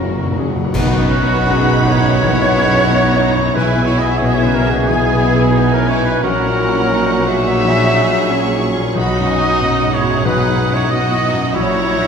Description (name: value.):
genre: classical, romantic movement for piano and orchestra.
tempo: 75-95 BPM.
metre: 4/4.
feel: rubato.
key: B major.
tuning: A4 = 440 Hz.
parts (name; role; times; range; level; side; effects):
clear concert grand piano; melody; 0.0-12.1 s; A#1 to F#5; -19 LUFS; left 2 dB; none.
clear symphonic violin section; melody; 0.0-12.1 s; F#4 to C#6; -27 LUFS; left 3 dB; none.
bright concert flute; second line; 0.0-12.1 s; F#4 to E5; -22 LUFS; left 2 dB; none.
clear chamber violin section; second line; 0.0-12.1 s; A#3 to G#4; -24 LUFS; left 2 dB; none.
warm oboe; second line; 0.0-12.1 s; A#4 to E6; -25 LUFS; right 1 dB; none.
mellow bassoon; accompaniment; 0.0-12.1 s; C#3 to F#3; -26 LUFS; right 2 dB; none.
rich studio viola section; accompaniment; 0.0-12.1 s; B3 to B4; -23 LUFS; right 4 dB; none.
mellow French horn section; sustained chords; 0.0-12.1 s; F#3 to F#4; -22 LUFS; left 4 dB; none.
clear symphonic double bass section; bass; 0.0-12.1 s; F#1 to B1; -23 LUFS; right 4 dB; none.
rich symphonic cello section; bass; 0.0-12.1 s; F#2 to B2; -23 LUFS; right 5 dB; none.
timpani; percussion; 0.0-1.8 s; F#2 to B2; -22 LUFS; left 1 dB; none.
clash cymbals and concert bass drum; percussion; 0.7-2.2 s; none; -27 LUFS; equal; none.
warm trumpet; stabs; 0.8-12.1 s; F#4 to E5; -20 LUFS; right 1 dB; none.
room: wet concert hall reverb, RT60 1.8 s.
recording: none.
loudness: -12 LUFS.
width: side -6 dB against mid.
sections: 0.7-12.1 A section.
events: timpani fill 0.0-0.7; band accent 0.7-1.5.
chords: 0.0 F#; 0.7 B; 3.5 E/B; 6.2 F#7/A#; 9.0 B; 11.5 F#7/A#.